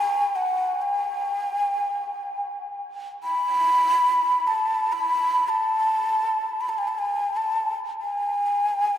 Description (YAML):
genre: Arabic maqam ensemble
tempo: free time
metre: none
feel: none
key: unclear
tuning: A4 = 440 Hz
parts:
  - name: breathy mellow ney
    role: solo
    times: 0.0-9.0 s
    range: F#5 to B5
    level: -21 LUFS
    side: equal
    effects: slapback echo
room: wet huge ambient reverb, RT60 8.6 s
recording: in a vast, echoing space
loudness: -21 LUFS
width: side -10 dB against mid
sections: 0.0-9.0 A section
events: none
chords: none